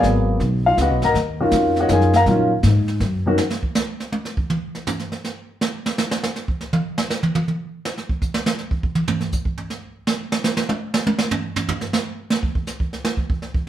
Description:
jazz piano trio; 161 BPM; 3/4; swing 66% on 8ths; Eb minor; A4 = 441 Hz
dark grand piano; melody; 0.0-3.4 s; Eb3 to Bb5; -17 LUFS; left 1 dB
upright bass; bass; 0.0-3.4 s; Ab1 to Bb2; -20 LUFS; equal
jazz brush drum kit; drums; 0.0-13.7 s; brushed snare drum, hi-hat, kick drum, snare drum, toms; -22 LUFS; right 2 dB
wet studio reverb, RT60 0.8 s; heard from further back in the room; -19 LUFS; side -11 dB against mid
0.0-3.4 A section; 3.4-13.7 A section
grand piano solo 0.0-3.4; drum solo 3.4-13.7
0.0 Abm9; 1.1 Ebm9; 3.4 N.C.

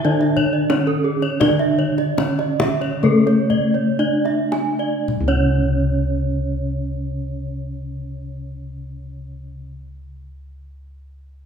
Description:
Balinese gamelan; 52-97 BPM; 4/4; straight; C# pelog; A4 = 440 Hz
gamelan-type bronze metallophone; melody; 0.0-9.8 s; A3 to D4+35c; -21 LUFS; left 1 dB
gamelan-type bronze metallophone; accompaniment; 0.0-9.8 s; C#3 to A3; -26 LUFS; right 1 dB
gamelan-type bronze metallophone; arpeggios; 0.0-9.8 s; A4 to D5+35c; -25 LUFS; equal
gamelan-type bossed gongs; bass; 0.0-9.7 s; C#2 to D4+35c; -25 LUFS; equal
gamelan-type bronze metallophone; arpeggios; 0.2-9.8 s; G#4 to G#5; -27 LUFS; right 7 dB
kendang; percussion; 0.2-5.6 s; -27 LUFS; left 2 dB
moderate concert hall reverb, RT60 2.0 s; minimal, uncompressed stereo recording; -17 LUFS; side -7 dB against mid
0.0-5.1 A section; 5.1-9.7 B section
slowing down 0.0-5.1

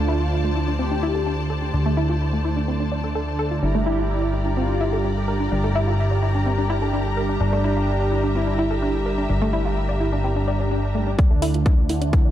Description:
melodic techno; 127 BPM; 4/4; straight; A4 = 440 Hz
analog synth brass; melody; 0.0-12.3 s; D3 to G4; -29 LUFS; right 1 dB; chorus, vintage 12-bit sampler grit, sidechain pumping, tape echo
rich studio string section; sustained chords; 0.0-12.3 s; F3 to Bb5; -31 LUFS; left 2 dB; sidechain pumping, low-pass filter
analog pluck; arpeggios; 0.0-12.3 s; A3 to D5; -27 LUFS; equal; chorus, phaser, sidechain pumping, dub echo
brassy analog pad; stabs; 0.0-12.3 s; D3 to G4; -27 LUFS; right 3 dB; chorus, tremolo, sidechain pumping, dub echo
fat analog bass; bass; 0.0-12.3 s; G1 to D2; -23 LUFS; equal; sidechain pumping
overtone-sweeping drone; drone; 11.6-12.3 s; D3 to A3; -36 LUFS; left 1 dB; chorus, built-in reverb, phaser, sidechain pumping
electronic kick drum; drums; 11.2-12.2 s; -16 LUFS; equal; overdrive
house drum kit; drums; 11.2-12.2 s; congas, hi-hat, toms; -35 LUFS; right 2 dB; overdrive, high-pass filter on snare, low-pass filter on snare, sidechain pumping on hats, high-pass filter on hats, low-pass filter on hats, sidechain pumping on toms, high-pass filter on toms, low-pass filter on toms, sidechain pumping on perc, high-pass filter on perc, low-pass filter on perc, high-pass filter on room, low-pass filter on room
light reverb; echo-heavy mix; -19 LUFS; side -12 dB against mid
0.0-11.2 A section; 11.2-12.3 B section
filter sweep on analog synth pad 0.0-11.2, 11.2-12.3; build-up 11.2-12.3; drum fill 11.2-12.3; filter sweep on synth arpeggio sound 11.2-12.3; filter sweep on analog polysynth 11.2-12.3; filter sweep 11.2-12.3
0.0 Dm7; 3.6 Gm; 11.2 D7(no3)

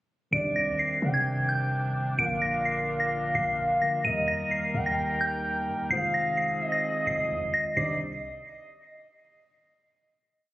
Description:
hip hop; 129 BPM; 4/4; half-time; C minor; A4 = 440 Hz
soft synth bell; melody; 0.3-8.0 s; G6 to Eb7; -28 LUFS; equal; chorus, low-pass filter
gliding portamento lead; second line; 0.3-8.0 s; D5 to G5; -30 LUFS; equal; chorus, phaser, ping-pong delay
muted felt-like synth keys; accompaniment; 0.3-8.0 s; D3 to C5; -34 LUFS; equal; chorus, low-pass filter
warm woodwind section; sustained chords; 0.3-8.0 s; C3 to D5; -38 LUFS; right 1 dB
warm 808-style bass; bass; 0.3-8.2 s; F1 to C3; -34 LUFS; equal
light reverb; recorded on a phone in the room, club reverb; -25 LUFS; side -16 dB against mid
0.3-7.8 hook; 7.8-9.6 final chord
0.3 Cmadd9; 2.2 Bb; 4.0 Eb; 5.9 Fm7; 7.8 Cmadd9

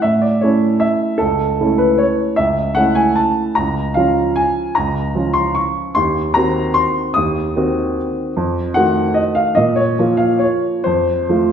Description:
classical, piano waltz; 128-162 BPM; 3/4; rubato; A major, Bb minor from 3.6 s; A4 = 440 Hz
warm baby grand piano; solo; 0.0-11.5 s; C#2 to Eb6; -14 LUFS; equal
wet large studio reverb, RT60 1.2 s; heard from further back in the room; -14 LUFS; side -8 dB against mid
0.0-11.5 A section
0.0 A; 1.2 A/C#; 3.6 Bbm/Db; 6.0 Cdim/Eb; 8.4 F7b9; 9.6 Bbm; 10.9 F

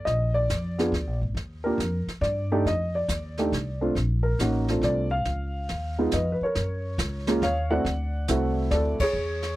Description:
jazz piano trio; 139 BPM; 3/4; swing 66% on 8ths; Bb major; A4 = 440 Hz
dark upright piano; melody; 0.0-9.6 s; Ab3 to F#5; -26 LUFS; equal
upright bass; bass; 0.1-9.6 s; Ab1 to G2; -27 LUFS; equal
jazz brush drum kit; drums; 0.1-9.6 s; brushed snare drum, hi-hat, kick drum, ride cymbal, snare drum; -33 LUFS; equal
little or no reverb; dry, close 1970s-style studio recording; -24 LUFS; side -16 dB against mid
0.0-6.6 A section; 6.6-9.6 B section
band accent 8.9
0.1 Bb; 1.4 Ebmaj9; 2.7 F7(no3); 4.0 Bbmaj9; 5.3 Db7; 6.6 F#maj7; 7.9 D9

